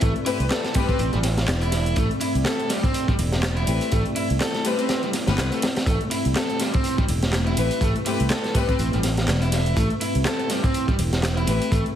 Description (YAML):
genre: breakbeat, breaks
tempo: 123 BPM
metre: 4/4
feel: swing 57% on 16ths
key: A minor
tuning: A4 = 443 Hz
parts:
  - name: deep dark ambient pad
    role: sustained chords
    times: 0.0-12.0 s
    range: A3 to D5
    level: -29 LUFS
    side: left 1 dB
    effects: chorus, built-in reverb, sidechain pumping
  - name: raw garage guitar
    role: riff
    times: 0.0-11.8 s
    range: G3 to A4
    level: -28 LUFS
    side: right 1 dB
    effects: overdrive, tape echo
  - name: fingered electric bass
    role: bass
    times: 0.0-11.8 s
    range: E1 to C2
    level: -23 LUFS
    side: equal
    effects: none
  - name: crunchy breakbeat drum kit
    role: drums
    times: 0.0-11.9 s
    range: hi-hat, kick drum, snare drum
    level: -25 LUFS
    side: equal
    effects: none
  - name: house drum kit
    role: drums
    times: 0.0-11.9 s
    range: handclaps, hi-hat, ride cymbal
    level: -33 LUFS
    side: equal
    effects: none
  - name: dark chamber string section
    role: stabs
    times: 0.3-11.6 s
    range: A3 to B4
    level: -28 LUFS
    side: left 5 dB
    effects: tape echo
room: light reverb, small room ambience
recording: heavily compressed radio sound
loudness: -20 LUFS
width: side -10 dB against mid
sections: 0.0-12.0 A section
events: none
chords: 0.0 Am9